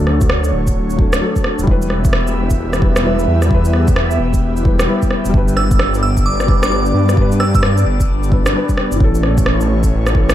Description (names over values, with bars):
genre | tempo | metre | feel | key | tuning
future garage | 131 BPM | 4/4 | swing 63% on 16ths | E dorian | A4 = 440 Hz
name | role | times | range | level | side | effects
felt-muted upright piano | accompaniment | 0.0-10.3 s | E3 to B4 | -22 LUFS | left 3 dB | sidechain pumping, digital delay
airy breathy pad | sustained chords | 0.0-10.3 s | A3 to E5 | -22 LUFS | left 1 dB | chorus, phaser, sidechain pumping
swelling detuned saw bass | bass | 0.0-10.3 s | D1 to G2 | -16 LUFS | equal | sidechain pumping
electronic rim click and shaker | drums | 0.1-10.3 s | none | -21 LUFS | right 1 dB | none
electronic kick drum | drums | 0.2-10.3 s | none | -16 LUFS | equal | none
glassy synth bell | melody | 5.6-7.6 s | D6 to E6 | -22 LUFS | right 4 dB | chorus, ping-pong delay
room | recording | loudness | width
moderate recital hall reverb, RT60 1.7 s, digital ambience | vinyl crackle | -12 LUFS | side -12 dB against mid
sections
0.0-10.3 A section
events
none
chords
0.0 D; 1.7 Em; 5.3 G; 9.0 A